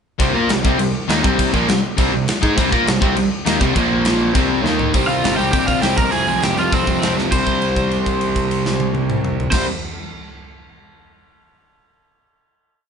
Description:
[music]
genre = punk rock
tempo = 202 BPM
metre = 4/4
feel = straight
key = C minor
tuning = A4 = 440 Hz
[part]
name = crunchy overdriven guitar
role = riff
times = 0.2-4.9 s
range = Bb2 to Bb4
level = -22 LUFS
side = left 1 dB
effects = none
[part]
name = distorted electric guitar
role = riff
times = 0.2-9.7 s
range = F2 to Bb4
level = -22 LUFS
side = right 7 dB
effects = distortion
[part]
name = overdriven semi-hollow guitar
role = riff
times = 0.2-9.7 s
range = F2 to Bb4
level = -22 LUFS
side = left 7 dB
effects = none
[part]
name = fuzz picked electric bass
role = bass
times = 0.2-9.6 s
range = G1 to Bb2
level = -25 LUFS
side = equal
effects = overdrive
[part]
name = tight metal drum kit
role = drums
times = 0.2-9.6 s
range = crash cymbal, hi-hat, kick drum, snare drum, toms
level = -20 LUFS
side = equal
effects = none
[part]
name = cranked stack guitar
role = melody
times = 5.1-9.6 s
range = C4 to Bb5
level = -21 LUFS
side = right 1 dB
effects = overdrive
[sound]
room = light reverb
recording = band playing live in one room, nothing above 10.8 kHz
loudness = -15 LUFS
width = side -6 dB against mid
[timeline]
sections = 0.2-4.9 riff; 4.9-7.3 outro; 7.3-9.7 final chord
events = drum fill 4.6, 7.2; held note 7.3-9.5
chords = 0.2 Cm; 3.8 Bb5; 4.3 C5; 4.6 Eb5; 4.9 C5; 6.0 Fm/C; 7.3 C5

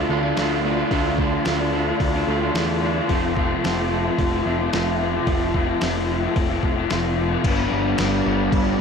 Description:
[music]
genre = rock, shoegaze and dream pop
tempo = 110 BPM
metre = 4/4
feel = straight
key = G mixolydian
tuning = A4 = 435 Hz
[part]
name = dark analog pad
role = sustained chords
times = 0.0-8.8 s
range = F4 to D6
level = -29 LUFS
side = right 1 dB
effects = chorus
[part]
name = crunchy overdriven guitar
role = riff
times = 0.0-8.8 s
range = F2 to B4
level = -25 LUFS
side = right 9 dB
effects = reverse reverb
[part]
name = raw garage guitar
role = riff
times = 0.0-8.8 s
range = G2 to F4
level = -24 LUFS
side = left 11 dB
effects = overdrive, wide subtle chorus
[part]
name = growling picked electric bass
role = bass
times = 0.0-8.7 s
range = F1 to E2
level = -26 LUFS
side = left 1 dB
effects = overdrive
[part]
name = lo-fi sampler-style drum kit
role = drums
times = 0.4-8.7 s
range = crash cymbal, hi-hat, kick drum, snare drum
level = -26 LUFS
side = left 1 dB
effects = none
[sound]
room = light reverb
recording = none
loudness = -19 LUFS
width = side -6 dB against mid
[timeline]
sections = 0.0-7.4 A section; 7.4-8.8 B section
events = none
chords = 0.0 Dm7; 3.1 Fmaj7; 7.4 G7

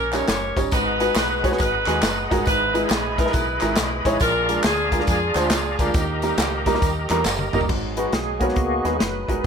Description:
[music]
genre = uptempo gospel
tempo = 138 BPM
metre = 4/4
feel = swing 65% on 8ths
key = G# minor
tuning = A4 = 440 Hz
[part]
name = bright saxophone section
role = melody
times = 0.0-7.3 s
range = A#3 to C#5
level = -24 LUFS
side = equal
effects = none
[part]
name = deep dub fingered electric bass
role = bass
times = 0.0-9.5 s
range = F#1 to E#2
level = -29 LUFS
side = equal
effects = none
[part]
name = bright baby grand piano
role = accompaniment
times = 0.1-9.5 s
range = G#2 to C#5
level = -24 LUFS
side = right 1 dB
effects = none
[part]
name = natural country drum kit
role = drums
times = 0.1-9.5 s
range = crash cymbal, hi-hat, kick drum, snare drum, toms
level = -24 LUFS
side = left 1 dB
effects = none
[part]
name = handclaps and tambourine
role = percussion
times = 0.1-7.6 s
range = none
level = -29 LUFS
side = right 1 dB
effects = none
[part]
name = bright tonewheel organ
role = sustained chords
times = 0.7-9.5 s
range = A#3 to B5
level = -27 LUFS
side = right 1 dB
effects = fast rotary speaker, overdrive, chorus vibrato
[part]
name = hand-pumped harmonium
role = sustained chords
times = 7.7-9.5 s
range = B2 to D#4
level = -34 LUFS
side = right 2 dB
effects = none
[sound]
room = light reverb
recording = none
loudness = -18 LUFS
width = side -6 dB against mid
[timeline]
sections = 0.0-7.7 A section; 7.7-9.5 B section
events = drum fill 7.3-7.7; tonewheel organ solo 7.7-9.5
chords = 0.0 D#7; 0.7 G#m7; 2.5 Emaj7/G#; 4.2 A#7; 5.9 D#; 7.7 G#m7

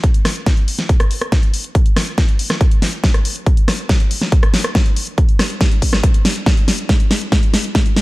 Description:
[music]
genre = trance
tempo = 140 BPM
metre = 4/4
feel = straight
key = none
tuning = none
[part]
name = big-room dance drum kit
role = drums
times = 0.0-8.0 s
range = hi-hat, rim click, snare drum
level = -18 LUFS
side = equal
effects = none
[part]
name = electronic kick drum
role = drums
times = 0.0-7.8 s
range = none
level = -13 LUFS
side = equal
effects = none
[sound]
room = digital ambience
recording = none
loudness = -13 LUFS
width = side -20 dB against mid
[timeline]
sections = 0.0-8.0 A section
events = build-up 0.0-8.0; drum fill 0.0-8.0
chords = none

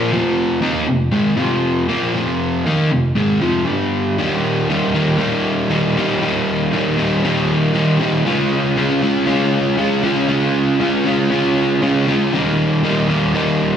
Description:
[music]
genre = rock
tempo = 118 BPM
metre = 4/4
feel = straight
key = unclear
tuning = A4 = 438 Hz
[part]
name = overdriven semi-hollow guitar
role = solo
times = 0.0-13.8 s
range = F2 to F4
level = -15 LUFS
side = equal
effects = none
[sound]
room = light reverb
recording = live gig heard through the venue's PA, club reverb, nothing above 10.6 kHz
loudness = -15 LUFS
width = side -8 dB against mid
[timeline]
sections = 0.0-4.2 A section; 4.2-13.8 B section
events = none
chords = 0.0 Fm; 3.7 G5; 4.2 Eb; 8.3 Db; 12.3 Eb

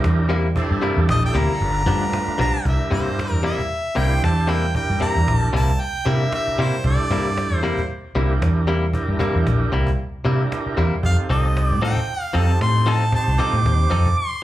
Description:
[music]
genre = straight-eighth soul blues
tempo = 115 BPM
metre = 4/4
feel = swing 56% on 16ths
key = C mixolydian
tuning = A4 = 440 Hz
[part]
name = overdriven tonewheel organ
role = accompaniment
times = 0.0-13.9 s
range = A3 to C5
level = -28 LUFS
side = right 4 dB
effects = slow rotary speaker, plate reverb, slapback echo
[part]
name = vintage muted fingered electric bass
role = bass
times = 0.0-14.1 s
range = G1 to C3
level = -19 LUFS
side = equal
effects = none
[part]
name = cajon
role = drums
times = 0.0-14.2 s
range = none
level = -28 LUFS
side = equal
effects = slapback echo
[part]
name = direct-recorded clean electric guitar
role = stabs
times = 0.3-14.1 s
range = G2 to A4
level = -25 LUFS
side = left 4 dB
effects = plate reverb, slapback echo
[part]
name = bright horn section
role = sustained chords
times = 0.6-2.5 s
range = B3 to Bb4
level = -34 LUFS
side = left 2 dB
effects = plate reverb
[part]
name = clear harmonica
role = melody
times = 1.1-7.9, 11.1-14.4 s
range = C5 to D6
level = -24 LUFS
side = right 1 dB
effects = plate reverb, slapback echo, analog delay
[sound]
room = light reverb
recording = live gig heard through the venue's PA, club reverb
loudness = -18 LUFS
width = side -14 dB against mid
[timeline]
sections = 0.0-2.7 A section; 2.7-14.4 B section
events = harmonica solo 0.0-2.7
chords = 0.0 C7; 1.6 G7; 2.7 C7; 11.0 F7

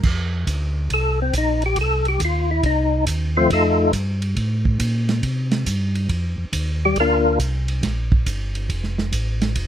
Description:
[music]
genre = soul jazz organ trio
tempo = 139 BPM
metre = 4/4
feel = swing 66% on 8ths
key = F mixolydian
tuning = A4 = 437 Hz
[part]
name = mellow tonewheel organ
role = bass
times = 0.0-9.7 s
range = F1 to C3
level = -21 LUFS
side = equal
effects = slow rotary speaker
[part]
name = warm soul drum kit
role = drums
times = 0.0-9.7 s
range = crash cymbal, hi-hat, kick drum, ride cymbal, snare drum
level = -25 LUFS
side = right 2 dB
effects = none
[part]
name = percussive tonewheel organ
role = melody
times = 0.9-3.9, 6.9-7.4 s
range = F3 to Bb4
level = -18 LUFS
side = left 2 dB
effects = slow rotary speaker, chorus vibrato
[sound]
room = little or no reverb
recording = close, detailed microphones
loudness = -18 LUFS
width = side -10 dB against mid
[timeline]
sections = 0.0-9.7 A section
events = tonewheel organ solo 0.0-9.7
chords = 0.0 F7; 5.2 C5; 6.1 Ebadd9; 7.0 Bb; 8.7 F

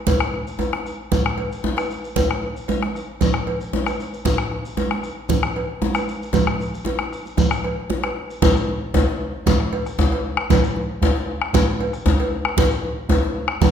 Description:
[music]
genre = west african traditional, West African drum ensemble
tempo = 115 BPM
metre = 4/4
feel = straight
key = none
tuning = none
[part]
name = bombo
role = percussion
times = 0.1-13.7 s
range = none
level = -23 LUFS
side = left 1 dB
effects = none
[part]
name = congas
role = percussion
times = 0.1-13.7 s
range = none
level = -24 LUFS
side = right 6 dB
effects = none
[part]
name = cowbell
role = percussion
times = 0.1-13.7 s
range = none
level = -27 LUFS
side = right 2 dB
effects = none
[part]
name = djembe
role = percussion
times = 0.1-13.7 s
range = none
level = -25 LUFS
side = left 4 dB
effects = none
[part]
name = shekere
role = percussion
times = 0.1-13.7 s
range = none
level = -32 LUFS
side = left 1 dB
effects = none
[sound]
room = wet recital hall reverb, RT60 1.4 s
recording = minimal, uncompressed stereo recording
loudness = -19 LUFS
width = side -8 dB against mid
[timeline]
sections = 0.0-8.4 A section; 8.4-13.7 B section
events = none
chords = none

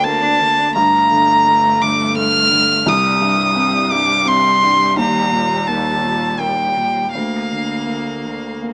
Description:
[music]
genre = neoclassical piano and strings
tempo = 85 BPM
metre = 3/4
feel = uneven beats, rubato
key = G minor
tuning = A4 = 440 Hz
[part]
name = clear violin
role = melody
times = 0.0-8.6 s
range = F5 to F6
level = -14 LUFS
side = equal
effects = none
[part]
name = clear cello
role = second line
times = 0.0-8.7 s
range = G3 to D4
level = -24 LUFS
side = equal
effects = none
[part]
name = felt-muted upright piano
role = accompaniment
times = 0.0-8.7 s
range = C2 to C4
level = -21 LUFS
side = equal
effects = none
[part]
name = clear double bass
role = bass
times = 0.0-8.7 s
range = G1 to Eb2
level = -29 LUFS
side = equal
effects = none
[sound]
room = studio ambience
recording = rough home demo mix, small speaker sound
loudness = -12 LUFS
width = side -39 dB against mid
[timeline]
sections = 0.0-8.7 A section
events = none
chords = 0.0 Bb/D; 0.8 Gmadd9; 2.9 Cm; 5.0 Eb; 7.1 Bb/D

